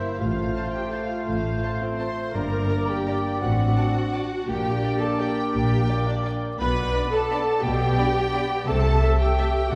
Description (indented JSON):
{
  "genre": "classical",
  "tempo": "170 BPM",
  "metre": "3/4",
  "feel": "uneven beats, rubato",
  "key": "G major from 6.6 s",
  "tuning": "A4 = 440 Hz",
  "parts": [
    { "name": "rich studio violin section", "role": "melody", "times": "0.0-9.8 s", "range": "C5 to C6", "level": "-38 LUFS", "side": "equal", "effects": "none" },
    { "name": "warm oboe", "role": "second line", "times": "0.0-9.8 s", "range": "C5 to E5", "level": "-38 LUFS", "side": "equal", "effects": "none" },
    { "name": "rich studio viola section", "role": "accompaniment", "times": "0.0-9.8 s", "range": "C4 to C5", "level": "-31 LUFS", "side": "equal", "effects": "none" },
    { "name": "warm bassoon", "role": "accompaniment", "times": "0.0-9.8 s", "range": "A3 to C4", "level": "-37 LUFS", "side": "equal", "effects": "none" },
    { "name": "dark French horn section", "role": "sustained chords", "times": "0.0-9.5 s", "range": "A3 to G4", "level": "-34 LUFS", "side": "equal", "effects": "none" },
    { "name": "warm trumpet", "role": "stabs", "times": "0.0-9.5 s", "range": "C5 to E5", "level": "-37 LUFS", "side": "equal", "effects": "none" },
    { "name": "mellow hollow silver concert flute", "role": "second line", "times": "0.2-9.8 s", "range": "C5 to C6", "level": "-35 LUFS", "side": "equal", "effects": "none" },
    { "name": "rich studio cello section", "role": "bass", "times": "0.2-9.8 s", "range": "G2 to C3", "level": "-31 LUFS", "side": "equal", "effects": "none" },
    { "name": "rich studio double bass section", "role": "bass", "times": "0.2-9.8 s", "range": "G1 to C2", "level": "-29 LUFS", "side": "equal", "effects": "none" },
    { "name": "rich studio violin section", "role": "second line", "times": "0.6-9.5 s", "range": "C5 to B5", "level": "-43 LUFS", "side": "equal", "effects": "none" }
  ],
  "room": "wet scoring stage reverb, RT60 2.0 s",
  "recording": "heard from further back in the room, vinyl crackle",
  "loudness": "-24 LUFS",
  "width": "mono",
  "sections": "0.0-9.8 A section",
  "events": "none",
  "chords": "0.2 F/A; 2.4 Gm; 3.4 D7/A; 4.5 Gm/Bb; 6.6 G/B; 8.7 Am/C"
}